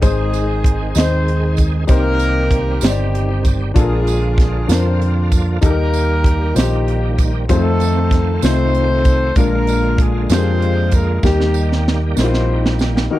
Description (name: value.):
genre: slow gospel.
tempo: 64 BPM (dotted quarters).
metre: 6/8.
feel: straight.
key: Eb major.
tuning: A4 = 440 Hz.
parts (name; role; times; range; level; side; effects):
mellow horn section; melody; 0.0-13.2 s; G3 to C5; -22 LUFS; equal; none.
warm grand piano; accompaniment; 0.0-13.2 s; Ab2 to Eb5; -21 LUFS; left 6 dB; none.
bright tonewheel organ; sustained chords; 0.0-13.1 s; D3 to Ab4; -26 LUFS; right 5 dB; slow rotary speaker, chorus vibrato.
hollow-body short-scale fingered electric bass; bass; 0.0-13.1 s; G1 to F2; -17 LUFS; equal; none.
tight funk drum kit; drums; 0.0-13.1 s; hi-hat, kick drum, snare drum; -16 LUFS; right 1 dB; none.
tambourine; percussion; 0.0-13.1 s; none; -32 LUFS; right 29 dB; none.
room: little or no reverb.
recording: dry, close 1970s-style studio recording.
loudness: -13 LUFS.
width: side -15 dB against mid.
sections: 0.0-13.1 A section.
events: drum fill 11.2-13.1.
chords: 0.0 Ab; 1.9 Cm; 3.8 Bb; 5.6 Eb; 7.5 F7; 9.4 Bb7; 11.2 Eb.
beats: | 0.03 0.96 | 1.89 2.82 | 3.75 4.69 | 5.62 6.56 | 7.49 8.43 | 9.36 10.30 | 11.24 12.17 | 13.11.